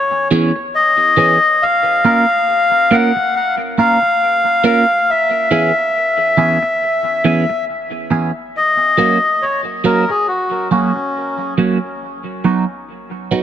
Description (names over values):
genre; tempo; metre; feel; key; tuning
reggae; 69 BPM; 4/4; swing 57% on 16ths; F# major; A4 = 440 Hz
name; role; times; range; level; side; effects
melodica; melody; 0.0-11.5 s; C#4 to F#5; -14 LUFS; left 2 dB; dub echo
clean electric guitar; accompaniment; 0.3-13.4 s; E3 to A#4; -18 LUFS; right 4 dB; phaser, dub echo
room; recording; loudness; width
moderate spring reverb, RT60 2.3 s; echo-heavy mix, faint mains hum; -12 LUFS; side -10 dB against mid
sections
0.0-8.5 A section; 8.5-13.4 B section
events
melodica solo 8.5-13.4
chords
0.0 C#m7; 1.6 A#m; 5.1 C#m7; 8.5 F#; 12.0 B